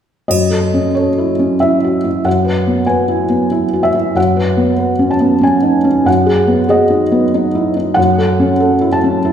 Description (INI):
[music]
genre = cinematic, emotional film score for orchestra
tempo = 94 BPM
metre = 3/4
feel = rubato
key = F# dorian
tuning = A4 = 440 Hz
[part]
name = felt-muted upright piano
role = accompaniment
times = 0.3-9.3 s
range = F#2 to A5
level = -11 LUFS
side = equal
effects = none
[part]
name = triangle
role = percussion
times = 0.3-1.6 s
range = none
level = -23 LUFS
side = right 5 dB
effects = none
[sound]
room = wet scoring stage reverb, RT60 1.5 s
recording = heard from further back in the room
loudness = -11 LUFS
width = side -9 dB against mid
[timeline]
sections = 0.3-9.3 A section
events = none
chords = 0.3 F#m7; 2.3 E/F#; 4.2 Bsus2/F#; 6.1 G#m7/F#; 8.0 F#m7